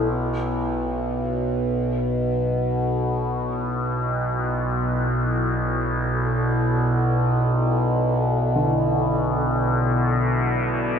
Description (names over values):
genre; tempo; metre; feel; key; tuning
dark ambient drone; free time; none; none; B minor; A4 = 440 Hz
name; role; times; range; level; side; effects
deep dark ambient pad; sustained chords; 0.0-11.0 s; B3 to D5; -29 LUFS; left 2 dB; chorus, built-in reverb
overtone-sweeping drone; drone; 0.0-11.0 s; B1 to B2; -21 LUFS; equal; chorus, built-in reverb
dark baby grand piano; arpeggios; 8.6-11.0 s; D3; -29 LUFS; equal; tape echo
room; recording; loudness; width
wet cathedral reverb, RT60 5.0 s; none; -20 LUFS; side -7 dB against mid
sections
0.1-11.0 A section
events
fade-in on ambient pad 0.1-11.0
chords
0.1 Bm